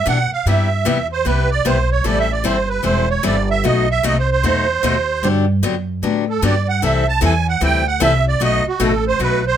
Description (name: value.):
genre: acoustic string swing (jazz manouche).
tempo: 151 BPM.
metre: 4/4.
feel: swing 62% on 8ths.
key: unclear.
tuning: A4 = 440 Hz.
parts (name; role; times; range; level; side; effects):
musette accordion; melody; 0.0-9.6 s; F#4 to A5; -18 LUFS; right 6 dB; none.
upright bass; bass; 0.0-9.6 s; E1 to B2; -19 LUFS; equal; none.
picked steel-string acoustic guitar; accompaniment; 0.1-9.4 s; B2 to A4; -20 LUFS; left 6 dB; none.
room: light reverb.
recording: close, detailed microphones.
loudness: -15 LUFS.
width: side -9 dB against mid.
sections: 0.0-9.6 A section.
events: accordion solo 0.0-9.6.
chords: 0.5 Cmaj7; 2.1 Am7; 3.6 B7b9; 5.2 Gmaj9; 6.8 C6; 8.4 B7.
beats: 0.07 | 0.46 0.86 1.26 1.66 | 2.05 2.45 2.85 3.25 | 3.64 4.04 4.44 4.83 | 5.23 5.63 6.02 6.42 | 6.82 7.21 7.61 8.01 | 8.40 8.80 9.19.